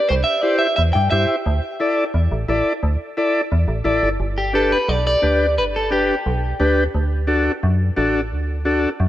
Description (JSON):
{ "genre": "latin, cumbia", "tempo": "175 BPM", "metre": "4/4", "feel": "straight", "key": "G major", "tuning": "A4 = 441 Hz", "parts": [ { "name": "electric guitar at the edge of break-up", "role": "melody", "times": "0.0-1.4, 4.4-6.7 s", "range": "G4 to G5", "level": "-20 LUFS", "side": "equal", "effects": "spring reverb" }, { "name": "metallic FM bass", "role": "bass", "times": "0.1-9.1 s", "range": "G1 to G2", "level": "-20 LUFS", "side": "equal", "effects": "none" }, { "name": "combo organ", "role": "accompaniment", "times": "0.4-8.9 s", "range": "D4 to D5", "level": "-20 LUFS", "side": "left 1 dB", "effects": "none" } ], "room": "moderate plate reverb, RT60 3.3 s", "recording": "heard from further back in the room", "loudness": "-16 LUFS", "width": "side -13 dB against mid", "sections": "0.0-4.2 A section; 4.2-9.1 B section", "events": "none", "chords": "0.1 C; 1.5 Dsus2; 4.2 G; 6.9 D" }